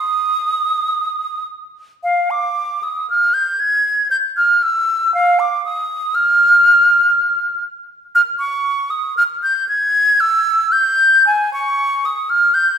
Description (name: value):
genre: classical, baroque-style fantasia for unaccompanied flute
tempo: 59 BPM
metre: 3/4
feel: uneven beats, rubato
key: unclear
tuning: A4 = 443 Hz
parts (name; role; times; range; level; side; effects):
- silver concert flute; solo; 0.0-12.8 s; F5 to Ab6; -13 LUFS; equal; none
room: wet recital hall reverb, RT60 1.7 s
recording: heard from further back in the room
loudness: -13 LUFS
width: side -8 dB against mid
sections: 0.0-12.8 A section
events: none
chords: none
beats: 0.97 | 2.03 3.09 4.12 | 5.15 6.16 7.15 | 8.14 9.17 10.19 | 11.26 12.30